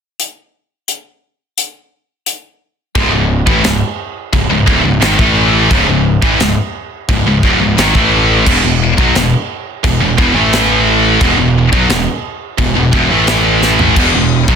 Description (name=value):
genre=heavy metal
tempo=87 BPM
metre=4/4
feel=straight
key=C# minor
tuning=A4 = 438 Hz
part: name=modern studio drum kit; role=drums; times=0.2-14.6 s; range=china cymbal, crash cymbal, hi-hat, kick drum, snare drum, toms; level=-16 LUFS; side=equal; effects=none
part: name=heavy high-gain guitar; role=riff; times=3.0-14.6 s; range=C#2 to A3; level=-15 LUFS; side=left 1 dB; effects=distortion
part: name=scooped high-gain guitar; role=riff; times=3.0-14.6 s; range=C#2 to A3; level=-13 LUFS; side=right 1 dB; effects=distortion
part: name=fuzz picked electric bass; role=bass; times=3.0-14.6 s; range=C#1 to B1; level=-16 LUFS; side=equal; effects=overdrive
room=light reverb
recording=dense, heavily limited modern master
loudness=-10 LUFS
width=side -7 dB against mid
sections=0.2-3.0 A section; 3.0-14.6 B section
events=drum fill 13.6-14.0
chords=0.2 N.C.; 3.0 C#m; 8.5 E5; 10.4 A5; 11.2 E5; 13.1 A5; 14.0 E5